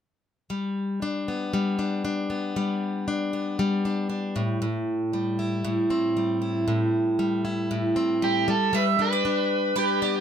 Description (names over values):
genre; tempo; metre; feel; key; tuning
pop; 117 BPM; 4/4; straight; G major; A4 = 444 Hz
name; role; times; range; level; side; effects
picked plugged-in steel-string acoustic guitar; accompaniment; 0.5-10.2 s; A2 to E4; -24 LUFS; left 1 dB; none
overdriven slide guitar; melody; 8.2-10.2 s; G4 to B4; -24 LUFS; right 1 dB; none
mandolin; arpeggios; 8.7-10.1 s; B4 to E5; -26 LUFS; right 7 dB; none
room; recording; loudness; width
light reverb; close, detailed microphones; -23 LUFS; side -8 dB against mid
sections
0.5-8.7 A section; 8.7-10.2 B section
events
none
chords
0.5 G; 4.4 Am7; 8.5 N.C.; 8.7 G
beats
| 0.50 1.02 1.53 2.05 | 2.56 3.08 3.59 4.11 | 4.62 5.14 5.65 6.17 | 6.68 7.19 7.71 8.22 | 8.74 9.25 9.77